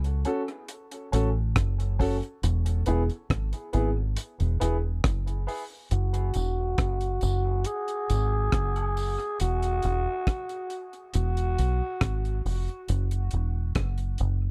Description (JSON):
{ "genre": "dub reggae", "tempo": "69 BPM", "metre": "4/4", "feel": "straight", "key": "unclear", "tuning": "A4 = 440 Hz", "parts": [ { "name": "deep dub fingered electric bass", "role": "bass", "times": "0.0-14.5 s", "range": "E1 to C#2", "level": "-28 LUFS", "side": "equal", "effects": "none" }, { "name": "deep reggae drum kit", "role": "drums", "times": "0.0-14.4 s", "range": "hi-hat, kick drum, rim click", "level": "-31 LUFS", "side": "equal", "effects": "none" }, { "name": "dark upright piano", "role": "stabs", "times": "0.3-6.5 s", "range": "B3 to A4", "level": "-34 LUFS", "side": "equal", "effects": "high-pass filter, low-pass filter, dub echo" }, { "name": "growling tenor saxophone", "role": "melody", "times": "5.9-12.4 s", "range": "F#4 to G#4", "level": "-34 LUFS", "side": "equal", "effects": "low-pass filter, dub echo" }, { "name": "tambourine and woodblock", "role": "percussion", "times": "6.4-9.2 s", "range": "none", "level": "-47 LUFS", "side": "equal", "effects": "high-pass filter on perc, dub echo" } ], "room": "little or no reverb", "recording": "dry, close 1970s-style studio recording", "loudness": "-28 LUFS", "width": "mono", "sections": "0.0-5.9 A section; 5.9-14.5 B section", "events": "break 0.0-5.9; filter sweep 2.4-14.5; part muted 9.4-14.5", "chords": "0.0 F#m; 2.4 E; 5.9 N.C.; 9.4 E; 12.9 Esus2" }